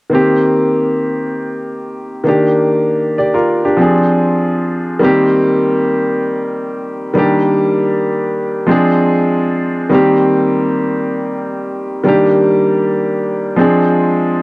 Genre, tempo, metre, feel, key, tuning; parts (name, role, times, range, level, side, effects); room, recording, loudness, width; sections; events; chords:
afrobeats; 98 BPM; 4/4; straight; C minor; A4 = 439 Hz
clear grand piano; solo; 0.1-14.4 s; Eb3 to D5; -12 LUFS; equal; cassette tape
wet booth ambience, RT60 0.2 s; home recording on cassette; -11 LUFS; side -23 dB against mid
0.1-5.0 A section; 5.0-14.4 B section
0.1 Cm7; 2.3 Ebmaj7; 3.8 Dm7b5; 5.0 Cm7; 7.2 Ebmaj7; 8.7 Dm7b5; 9.9 Cm7; 12.1 Ebmaj7; 13.6 Dm7b5